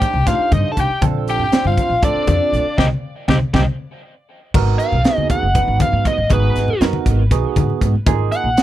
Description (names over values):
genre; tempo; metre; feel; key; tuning
electric jazz fusion; 239 BPM (eighths); 7/8; straight; C dorian, G# dorian from 4.5 s; A4 = 440 Hz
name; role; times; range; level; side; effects
biting lead guitar; melody; 0.0-8.6 s; B4 to A5; -20 LUFS; equal; overdrive, tape echo
growling tenor saxophone; second line; 0.0-3.6 s; D4 to A4; -24 LUFS; left 9 dB; none
barky tine electric piano; accompaniment; 0.0-8.6 s; A#3 to C5; -23 LUFS; right 13 dB; medium stereo tremolo, phaser
crisp fusion drum kit; drums; 0.0-8.6 s; crash cymbal, hi-hat, kick drum, snare drum; -19 LUFS; equal; none
upright bass; bass; 0.1-8.5 s; F#1 to G#2; -19 LUFS; equal; none
congas; percussion; 0.1-8.3 s; none; -22 LUFS; left 3 dB; none
room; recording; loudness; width
little or no reverb; none; -14 LUFS; side -13 dB against mid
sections
0.0-4.5 A section; 4.5-8.6 B section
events
band accent 2.8-4.5; drum fill 3.9-4.5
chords
0.0 Cmadd9; 1.0 Bbmaj9; 2.8 Cm; 3.8 N.C.; 4.5 G#m9; 8.1 F#maj13/G#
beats
0.02 0.27 0.52 0.77 | 1.02 1.27 1.53 1.78 2.03 2.28 2.53 | 2.78 3.03 3.29 3.54 3.79 4.04 4.29 | 4.54 4.79 5.04 5.30 5.55 5.80 6.05 | 6.30 6.55 6.80 7.05 7.31 7.56 7.81 | 8.06 8.31 8.56